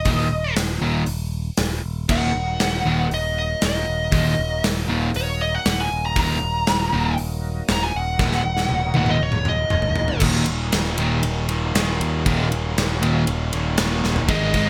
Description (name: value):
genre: hard rock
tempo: 118 BPM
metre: 4/4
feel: straight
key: Eb minor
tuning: A4 = 442 Hz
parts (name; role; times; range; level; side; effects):
- biting lead guitar; melody; 0.0-10.2, 14.3-14.7 s; Db5 to Bb5; -26 LUFS; equal; overdrive, slapback echo
- overdriven electric guitar; riff; 0.1-14.7 s; Eb2 to Ab3; -26 LUFS; equal; none
- overdriven semi-hollow guitar; riff; 0.1-14.7 s; Eb2 to Ab3; -27 LUFS; equal; none
- modern bright picked electric bass; bass; 0.1-14.7 s; Eb1 to Eb2; -27 LUFS; equal; none
- gated 80s drum kit; drums; 0.1-14.7 s; crash cymbal, hi-hat, kick drum, ride cymbal, snare drum, toms; -26 LUFS; equal; none
- overdriven tonewheel organ; sustained chords; 2.1-14.7 s; Gb3 to Bb4; -37 LUFS; equal; none
- distorted electric guitar; riff; 10.2-14.3 s; Eb2 to Eb3; -28 LUFS; equal; overdrive
room: light reverb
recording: none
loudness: -21 LUFS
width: mono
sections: 0.0-10.2 A section; 10.2-14.3 B section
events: lead electric guitar solo 0.0-10.2; drum fill 8.2-10.2, 14.0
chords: 0.0 Ebm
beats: | 0.06 0.57 1.08 1.59 | 2.10 2.60 3.11 3.62 | 4.13 4.64 5.15 5.66 | 6.17 6.67 7.18 7.69 | 8.20 8.71 9.22 9.73 | 10.23 10.74 11.25 11.76 | 12.26 12.77 13.28 13.78 | 14.29